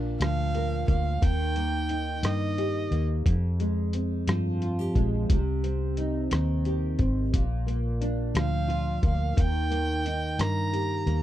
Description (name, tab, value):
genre	six-eight pop ballad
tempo	59 BPM (dotted quarters)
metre	6/8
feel	straight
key	Eb major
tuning	A4 = 439 Hz
part	nylon-string guitar	accompaniment	0.0-11.2 s	F2 to Bb4	-30 LUFS	equal	double-tracked left and right
part	vintage muted fingered electric bass	bass	0.0-11.2 s	Ab1 to G2	-28 LUFS	equal	none
part	warm violin	melody	0.2-3.0, 8.4-11.2 s	Eb5 to Bb5	-32 LUFS	right 3 dB	none
part	lo-fi sampler-style drum kit	drums	0.2-11.2 s	hi-hat, kick drum, rim click	-26 LUFS	equal	overdrive
room	little or no reverb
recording	dry, close 1970s-style studio recording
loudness	-24 LUFS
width	side -13 dB against mid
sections	0.0-11.2 A section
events	none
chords	0.0 Bb; 1.2 Eb; 3.3 Fmadd9; 5.3 Cm; 7.3 Bb; 9.4 Eb